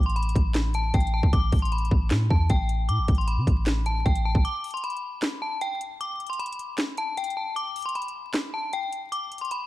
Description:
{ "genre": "hip hop, trap", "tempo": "154 BPM", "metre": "4/4", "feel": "half-time", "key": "A minor", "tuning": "A4 = 440 Hz", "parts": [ { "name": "metallic FM bell", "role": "melody", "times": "0.0-9.7 s", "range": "G5 to D6", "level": "-29 LUFS", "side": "left 2 dB", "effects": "chorus, low-pass filter" }, { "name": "clean 808-style bass", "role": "bass", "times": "0.0-4.4 s", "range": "A1 to C3", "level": "-24 LUFS", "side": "equal", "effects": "none" }, { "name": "trap drum kit", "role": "drums", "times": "0.0-9.6 s", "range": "handclaps, hi-hat, kick drum, snare drum", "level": "-25 LUFS", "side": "equal", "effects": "none" } ], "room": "digital ambience", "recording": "dark, warm production, vinyl crackle", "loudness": "-23 LUFS", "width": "side -16 dB against mid", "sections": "0.0-9.7 A section", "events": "break 4.4-9.7", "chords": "none" }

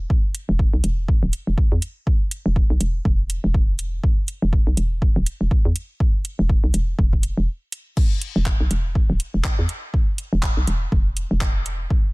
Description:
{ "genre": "minimal techno", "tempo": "122 BPM", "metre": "4/4", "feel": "swing 58% on 16ths", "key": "unclear", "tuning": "A4 = 444 Hz", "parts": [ { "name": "hollow knocking FM bass", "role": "bass", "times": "0.0-11.9 s", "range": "D1 to E2", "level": "-21 LUFS", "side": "equal", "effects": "tube saturation, sidechain pumping" }, { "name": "electronic kick drum", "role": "drums", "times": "0.1-12.0 s", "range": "none", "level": "-18 LUFS", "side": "equal", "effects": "none" }, { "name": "garage drum kit", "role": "drums", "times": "0.3-11.8 s", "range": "crash cymbal, handclaps, hi-hat", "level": "-30 LUFS", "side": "equal", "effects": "none" } ], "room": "little or no reverb", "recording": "none", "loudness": "-18 LUFS", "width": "side -27 dB against mid", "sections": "0.0-12.1 A section", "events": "break 7.5-8.0", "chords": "none" }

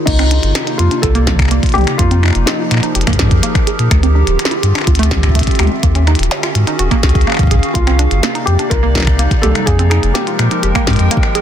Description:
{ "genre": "IDM", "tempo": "125 BPM", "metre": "4/4", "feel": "straight", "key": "unclear", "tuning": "A4 = 440 Hz", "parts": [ { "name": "warbly tape-like pad", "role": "sustained chords", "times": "0.0-11.4 s", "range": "C3 to G5", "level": "-19 LUFS", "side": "equal", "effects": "chorus, built-in reverb, vintage 12-bit sampler grit" }, { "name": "warbly dusty pluck", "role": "arpeggios", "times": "0.0-11.4 s", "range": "A3 to Ab4", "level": "-22 LUFS", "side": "right 4 dB", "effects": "chorus, dub echo" }, { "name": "felt-muted upright piano", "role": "melody", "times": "0.1-3.6, 7.7-11.3 s", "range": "Eb4 to Bb4", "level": "-20 LUFS", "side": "left 2 dB", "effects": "ping-pong delay" }, { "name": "warm sub bass", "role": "bass", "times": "0.1-11.1 s", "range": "D1 to Bb2", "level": "-13 LUFS", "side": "equal", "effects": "none" }, { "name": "electronic kick drum", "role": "drums", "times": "0.1-11.3 s", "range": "none", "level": "-15 LUFS", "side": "equal", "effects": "none" }, { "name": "glitchy drum kit", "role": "drums", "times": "0.1-11.4 s", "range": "crash cymbal, finger snaps, hi-hat, snare drum, toms", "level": "-18 LUFS", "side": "left 1 dB", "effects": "soft clipping on snare" } ], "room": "digital ambience", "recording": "dense, heavily limited modern master", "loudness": "-10 LUFS", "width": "side -10 dB against mid", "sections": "0.1-11.4 A section", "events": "none", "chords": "0.1 Cm11; 2.0 Fm11; 3.9 Dm11; 5.8 Ebm11; 7.8 Cm11; 9.7 Fm11" }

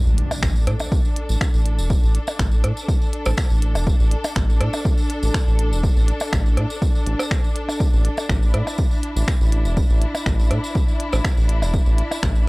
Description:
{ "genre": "minimal techno", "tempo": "122 BPM", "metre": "4/4", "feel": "swing 53% on 16ths", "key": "unclear", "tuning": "A4 = 441 Hz", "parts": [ { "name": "impact", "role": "sound effects", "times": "0.0-1.9 s", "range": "none", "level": "-29 LUFS", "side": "equal", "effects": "none" }, { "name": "clear studio string section", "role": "texture", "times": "0.0-12.5 s", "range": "D4 to A4", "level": "-29 LUFS", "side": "left 1 dB", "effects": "sidechain pumping" }, { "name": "round analog bass", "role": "bass", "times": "0.1-12.5 s", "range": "E1 to A2", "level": "-20 LUFS", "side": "equal", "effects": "sidechain pumping" }, { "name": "tambourine", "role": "percussion", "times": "0.1-12.4 s", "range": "none", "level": "-36 LUFS", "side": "right 1 dB", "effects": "none" }, { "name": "minimal click drum kit", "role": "drums", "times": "0.2-12.3 s", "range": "finger snaps, hi-hat", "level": "-27 LUFS", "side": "equal", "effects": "overdrive" }, { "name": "percussion blips", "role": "percussion", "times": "0.3-12.2 s", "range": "none", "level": "-27 LUFS", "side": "right 1 dB", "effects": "analog delay" }, { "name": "electronic kick drum", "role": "drums", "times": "0.4-12.3 s", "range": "none", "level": "-20 LUFS", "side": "equal", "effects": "none" } ], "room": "little or no reverb", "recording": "dry, gritty hardware recording", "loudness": "-17 LUFS", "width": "side -25 dB against mid", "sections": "0.0-12.5 A section", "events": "impact 0.0-1.9", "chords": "0.0 Asus4" }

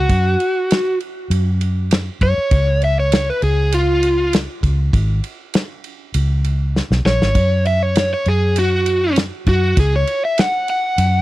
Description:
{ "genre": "straight-eighth soul blues", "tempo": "99 BPM", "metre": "4/4", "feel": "straight", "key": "unclear", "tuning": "A4 = 440 Hz", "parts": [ { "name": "overdriven electric guitar", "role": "melody", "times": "0.0-11.2 s", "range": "F4 to Gb5", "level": "-18 LUFS", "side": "equal", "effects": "none" }, { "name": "vintage muted fingered electric bass", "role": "bass", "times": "0.0-11.2 s", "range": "Ab1 to Gb2", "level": "-17 LUFS", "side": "equal", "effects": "none" }, { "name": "warm soul drum kit", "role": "drums", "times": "0.1-11.1 s", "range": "kick drum, ride cymbal, snare drum", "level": "-19 LUFS", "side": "equal", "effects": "none" } ], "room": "little or no reverb", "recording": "dry, close 1970s-style studio recording", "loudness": "-15 LUFS", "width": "side -17 dB against mid", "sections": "0.0-11.2 A section", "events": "overdriven electric guitar solo 0.0-11.2; drum fill 6.7-7.4", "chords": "0.1 Gb5; 2.5 N.C.; 7.4 Gb5" }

